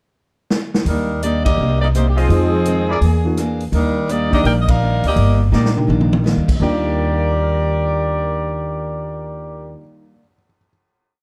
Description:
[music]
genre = jazz, big band swing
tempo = 167 BPM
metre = 4/4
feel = swing 64% on 8ths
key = Eb major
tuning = A4 = 441 Hz
[part]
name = swinging big-band drum kit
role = drums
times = 0.5-6.5 s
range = crash cymbal, hi-hat, kick drum, ride cymbal, rim click, snare drum, toms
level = -23 LUFS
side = equal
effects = none
[part]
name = upright bass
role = bass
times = 0.8-9.7 s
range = G1 to Bb2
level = -20 LUFS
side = equal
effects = none
[part]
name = bright saxophone section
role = melody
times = 0.9-5.4 s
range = F3 to G5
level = -22 LUFS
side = equal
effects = none
[part]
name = picked steel-string acoustic guitar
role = accompaniment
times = 0.9-10.3 s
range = F2 to G#4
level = -28 LUFS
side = equal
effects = none
[part]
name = mellow trumpet section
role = stabs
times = 2.2-9.8 s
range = Eb4 to Eb5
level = -25 LUFS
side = equal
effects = none
[part]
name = warm upright piano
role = accompaniment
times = 2.3-10.7 s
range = Eb2 to Bb6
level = -27 LUFS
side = equal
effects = none
[sound]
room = light reverb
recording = dark, warm production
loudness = -17 LUFS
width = mono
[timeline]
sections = 0.0-0.9 pickup bar; 0.9-6.6 A section; 6.6-9.5 final chord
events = drum fill 0.5-0.9, 5.5-6.2; band accent 1.4, 4.6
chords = 0.0 N.C.; 0.9 Ebmaj7; 1.6 Cm9; 2.3 Fm7; 3.0 E7#11; 3.7 Ebmaj7

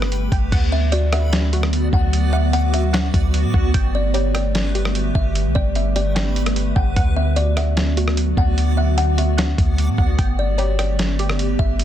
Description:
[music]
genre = hip hop, atmospheric cloud-rap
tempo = 149 BPM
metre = 4/4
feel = half-time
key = D major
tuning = A4 = 440 Hz
[part]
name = ethereal airy pad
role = sustained chords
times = 0.0-11.8 s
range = D3 to G4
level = -25 LUFS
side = right 1 dB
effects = ensemble chorus, built-in reverb, sidechain pumping
[part]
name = warbly dusty pluck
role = arpeggios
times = 0.0-11.8 s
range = F#4 to G5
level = -32 LUFS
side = right 2 dB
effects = chorus, low-pass filter, ping-pong delay
[part]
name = clean 808-style bass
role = bass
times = 0.0-11.8 s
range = G1 to A2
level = -19 LUFS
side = equal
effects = none
[part]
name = lo-fi sampler-style drum kit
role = drums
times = 0.0-11.8 s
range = crash cymbal, hi-hat, kick drum, rim click, snare drum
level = -21 LUFS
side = equal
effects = vintage 12-bit sampler grit
[part]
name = backwards swelling texture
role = texture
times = 0.0-11.8 s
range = A3 to D5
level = -31 LUFS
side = left 1 dB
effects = built-in reverb
[part]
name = kalimba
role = melody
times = 0.7-11.8 s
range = C#5 to F#5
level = -26 LUFS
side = left 2 dB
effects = low-pass filter, ping-pong delay
[sound]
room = little or no reverb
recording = dense, heavily limited modern master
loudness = -16 LUFS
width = side -11 dB against mid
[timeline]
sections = 0.5-11.8 A section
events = none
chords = 0.0 Gadd9; 0.5 D6; 3.7 Gadd9; 7.0 D6; 10.2 Gadd9

